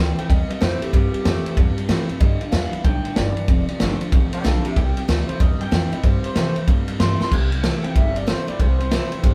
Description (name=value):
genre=rockabilly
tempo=188 BPM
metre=4/4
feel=swing 64% on 8ths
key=C major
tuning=A4 = 441 Hz
part: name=electric guitar through a small old amp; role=melody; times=0.0-9.3 s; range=G4 to C6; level=-32 LUFS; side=equal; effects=none
part: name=picked steel-string acoustic guitar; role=accompaniment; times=0.0-9.3 s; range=F2 to F4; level=-29 LUFS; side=equal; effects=none
part: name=electric guitar through a small old amp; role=riff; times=0.0-9.3 s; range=F2 to A3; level=-31 LUFS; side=equal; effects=none
part: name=upright bass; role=bass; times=0.0-9.3 s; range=F1 to C3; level=-26 LUFS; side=equal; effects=none
part: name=vintage drum kit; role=drums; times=0.2-9.3 s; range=crash cymbal, kick drum, ride cymbal, snare drum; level=-22 LUFS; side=equal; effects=none
room=light reverb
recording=band playing live in one room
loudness=-20 LUFS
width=mono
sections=0.0-7.3 A section; 7.3-9.3 B section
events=clean electric guitar solo 0.0-7.3; drum fill 7.2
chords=0.0 C6; 2.2 G6; 3.5 F6; 4.8 C6